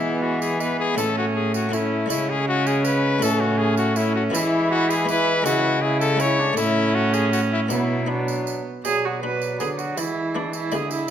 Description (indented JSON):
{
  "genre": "classical, renaissance-style consort dance",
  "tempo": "161 BPM",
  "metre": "3/4",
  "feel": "straight",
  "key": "unclear",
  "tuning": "A4 = 439 Hz",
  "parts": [
    { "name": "clear cornet", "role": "melody", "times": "0.0-11.1 s", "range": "D4 to E5", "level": "-24 LUFS", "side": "left 4 dB", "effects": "none" },
    { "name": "rich viola", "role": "second line", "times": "0.0-11.1 s", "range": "B3 to B4", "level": "-25 LUFS", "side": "right 4 dB", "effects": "none" },
    { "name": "buff-stop harpsichord", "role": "accompaniment", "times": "0.0-11.1 s", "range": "A2 to E4", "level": "-32 LUFS", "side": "left 3 dB", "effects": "none" },
    { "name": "mellow bassoon", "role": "accompaniment", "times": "0.0-11.1 s", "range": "F#3 to A3", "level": "-29 LUFS", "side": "left 2 dB", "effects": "none" },
    { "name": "rich cello", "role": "bass", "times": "0.0-11.1 s", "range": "A2 to E3", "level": "-25 LUFS", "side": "right 1 dB", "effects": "none" },
    { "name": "tambourine", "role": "percussion", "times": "0.4-11.1 s", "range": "none", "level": "-34 LUFS", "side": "right 8 dB", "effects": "none" }
  ],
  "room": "wet recital hall reverb, RT60 1.8 s",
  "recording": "none",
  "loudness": "-19 LUFS",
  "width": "side -9 dB against mid",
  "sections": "0.0-8.8 A section; 8.8-11.1 B section",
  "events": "none",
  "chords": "0.0 E; 1.0 A; 2.1 C#m; 3.2 A; 4.3 E; 5.5 C#m; 6.6 A; 7.7 Bm; 10.0 E",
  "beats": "0.23 0.61 | 0.98 1.36 1.73 | 2.10 2.47 2.85 | 3.22 3.59 3.96 | 4.33 4.71 5.08 | 5.45 5.82 6.20 | 6.57 6.95 7.33 | 7.71 8.09 8.47 | 8.85 9.22 9.60 | 9.97 10.35 10.72 | 11.09"
}